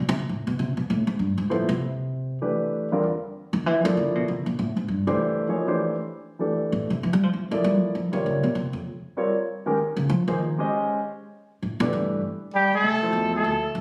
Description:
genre	modal jazz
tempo	196 BPM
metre	4/4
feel	swing 62% on 8ths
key	C major, F major from 3.0 s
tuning	A4 = 439 Hz
part	upright bass	bass	0.0-13.8 s	B1 to G3	-27 LUFS	equal	none
part	warm concert grand piano	accompaniment	1.5-13.4 s	E2 to Eb5	-27 LUFS	equal	none
part	mellow bass clarinet	second line	12.5-13.7 s	G3 to A3	-28 LUFS	equal	none
part	warm trumpet	melody	12.6-13.7 s	G4 to A4	-25 LUFS	equal	none
room	light reverb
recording	recorded on a phone in the room, studio reverb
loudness	-25 LUFS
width	mono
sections	0.0-3.0 A section; 3.0-12.8 A section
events	upright bass solo 0.0-12.8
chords	0.0 Cmaj9; 3.0 Fmaj9; 7.9 Dbmaj9; 11.6 G69; 12.8 Cmaj9

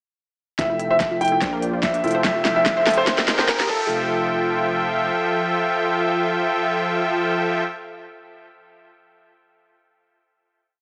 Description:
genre	future bass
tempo	145 BPM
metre	4/4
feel	swing 53% on 16ths, half-time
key	F major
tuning	A4 = 440 Hz
part	clear grand piano	melody	0.6-7.6 s	A4 to G5	-25 LUFS	equal	sidechain pumping, digital delay
part	unison pluck	arpeggios	0.6-4.1 s	D4 to A5	-32 LUFS	equal	sidechain pumping, tape echo
part	big bright polysynth	riff	0.6-7.6 s	F3 to G5	-24 LUFS	equal	sidechain pumping, tape echo
part	long sustained 808-style bass	bass	0.6-5.1 s	F1 to Bb1	-35 LUFS	equal	sidechain pumping
part	electronic kick drum	drums	0.6-3.8 s	none	-35 LUFS	equal	small room ambience
part	pop drum kit	drums	0.6-3.7 s	hi-hat, snare drum	-25 LUFS	equal	small room ambience
part	riser	sound effects	1.7-3.9 s	none	-36 LUFS	equal	none
room	moderate digital room reverb, RT60 1.1 s, digital ambience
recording	high-pass filter, small speaker sound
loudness	-21 LUFS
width	mono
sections	0.6-3.9 build; 3.9-7.2 final hit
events	build-up 0.6-3.9; drum fill 0.6-3.9; filter sweep on analog polysynth 0.6-3.9; filter sweep on synth arpeggio sound 0.6-3.9; filter sweep 0.6-3.9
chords	0.6 Fmaj7; 1.4 Bb6; 2.0 Fmaj7; 3.1 Abmaj7; 3.7 Fmaj7

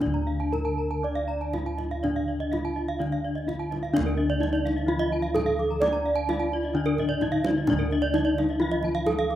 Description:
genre	Balinese gamelan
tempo	115-129 BPM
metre	4/4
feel	straight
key	D pelog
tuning	A4 = 439 Hz
part	gamelan-type bronze metallophone	melody	0.0-9.4 s	D4 to D5	-27 LUFS	left 1 dB	none
part	gamelan-type bronze metallophone	accompaniment	0.0-9.4 s	D3 to D4	-37 LUFS	left 2 dB	none
part	gamelan-type bronze metallophone	arpeggios	0.0-9.4 s	D5 to D6	-38 LUFS	left 4 dB	none
part	gamelan-type bossed gongs	bass	0.0-9.4 s	D2 to D5	-29 LUFS	equal	none
part	kendang	percussion	0.0-9.4 s	none	-35 LUFS	right 3 dB	none
part	gamelan-type bronze metallophone	arpeggios	0.1-9.3 s	Bb4-20c to Bb5-20c	-32 LUFS	right 5 dB	none
room	studio reverb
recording	rough home demo mix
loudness	-24 LUFS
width	side -12 dB against mid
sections	0.0-3.9 A section; 3.9-9.4 B section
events	none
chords	none

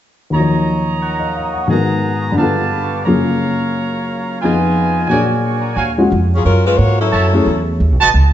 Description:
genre	jazz, big band swing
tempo	177 BPM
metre	4/4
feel	swing 64% on 8ths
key	Eb minor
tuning	A4 = 440 Hz
part	warm baby grand piano	accompaniment	0.3-7.5 s	Eb2 to Gb5	-16 LUFS	left 2 dB	none
part	clear trumpet section	stabs	0.3-8.1 s	F4 to Eb6	-18 LUFS	right 3 dB	none
part	upright bass	bass	5.8-8.3 s	A1 to Ab2	-14 LUFS	right 1 dB	none
part	warm saxophone section	melody	6.4-7.6 s	Gb3 to Db5	-16 LUFS	left 2 dB	none
room	moderate recital hall reverb, RT60 1.8 s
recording	dark, warm production, nothing above 7.9 kHz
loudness	-13 LUFS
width	side -11 dB against mid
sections	0.3-5.8 A section; 5.8-8.3 B section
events	none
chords	0.3 Ebm7; 1.7 Abm9; 2.4 G9; 3.1 Gbmaj7; 4.4 Fm7b5; 5.1 Bb7alt; 5.8 Ebm11; 7.1 Gbm7; 7.8 B7

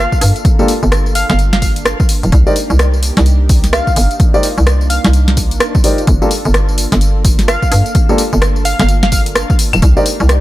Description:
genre	UK garage, two-step garage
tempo	128 BPM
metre	4/4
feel	swing 61% on 16ths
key	G minor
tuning	A4 = 440 Hz
part	plucky unison lead	melody	0.0-9.2 s	F5	-21 LUFS	equal	ping-pong delay
part	warm analog pad	sustained chords	0.0-10.4 s	Bb3 to A4	-25 LUFS	right 1 dB	chorus, sidechain pumping
part	hollow knocking FM bass	bass	0.0-10.4 s	D1 to G2	-12 LUFS	equal	none
part	electronic kick drum	drums	0.1-9.9 s	none	-12 LUFS	equal	overdrive
part	punchy analog drum machine	drums	0.1-10.4 s	claves, hi-hat, rim click, snare drum, tambourine	-17 LUFS	equal	overdrive
part	dark baby grand piano	stabs	0.6-10.0 s	Bb3 to D5	-17 LUFS	left 1 dB	ping-pong delay
room	digital ambience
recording	none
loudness	-10 LUFS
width	side -16 dB against mid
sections	0.0-10.4 A section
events	none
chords	0.0 Gm9; 2.3 Cm9; 6.1 Gm9; 9.8 Cm9

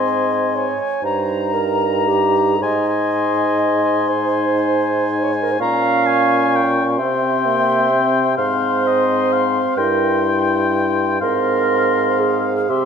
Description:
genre	classical, slow romantic movement for wind quintet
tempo	36-44 BPM (dotted quarters)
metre	6/8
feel	rubato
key	F minor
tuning	A4 = 440 Hz
part	concert flute	melody	0.0-12.9 s	Bb5 to Db6	-22 LUFS	left 9 dB	none
part	warm oboe	second line	0.0-12.9 s	Eb5 to Bb5	-23 LUFS	left 4 dB	none
part	clear French horn	accompaniment	0.0-12.9 s	Bb3 to E4	-24 LUFS	left 2 dB	none
part	dark clarinet	accompaniment	0.0-12.9 s	G4 to F5	-20 LUFS	right 7 dB	none
part	mellow bassoon	bass	0.0-12.9 s	G2 to C3	-22 LUFS	right 2 dB	none
room	moderate scoring stage reverb, RT60 1.6 s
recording	none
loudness	-15 LUFS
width	side -7 dB against mid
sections	0.0-12.9 A section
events	none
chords	0.0 Ab; 1.0 Eb/G; 2.6 Ab; 5.6 Gdim/Bb; 7.0 C; 8.4 Fm/Ab; 9.8 C/G; 11.2 Fm/Ab

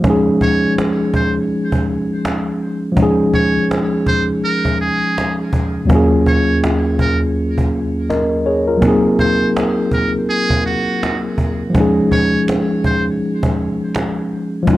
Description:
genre	lo-fi hip hop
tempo	82 BPM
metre	4/4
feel	swing 58% on 16ths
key	unclear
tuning	A4 = 440 Hz
part	tine electric piano	accompaniment	0.0-14.8 s	Eb2 to Eb5	-15 LUFS	equal	medium stereo tremolo, cassette tape
part	cajon	drums	0.0-14.8 s	none	-20 LUFS	right 1 dB	none
part	trumpet with metal mute	melody	0.4-13.0 s	Gb4 to Db5	-22 LUFS	right 2 dB	tape echo
part	finger snaps	percussion	12.5-14.1 s	none	-30 LUFS	right 6 dB	none
room	wet small room reverb, RT60 0.5 s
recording	cassette tape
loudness	-14 LUFS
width	side -16 dB against mid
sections	0.0-14.8 A section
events	break 0.0-11.7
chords	0.0 Dbadd9; 5.9 Ebm11; 8.8 Ab7; 11.7 Dbadd9

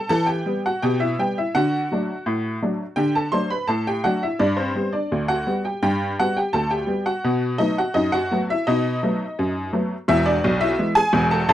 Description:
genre	ragtime piano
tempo	84 BPM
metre	2/4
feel	straight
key	G major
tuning	A4 = 445 Hz
part	honky-tonk upright piano	solo	0.0-11.5 s	E1 to C6	-19 LUFS	equal	none
room	light reverb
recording	dry, close 1970s-style studio recording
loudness	-19 LUFS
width	side -12 dB against mid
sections	0.0-11.5 A section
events	none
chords	0.0 Em; 1.5 D; 4.4 G; 7.3 B7; 10.1 E7

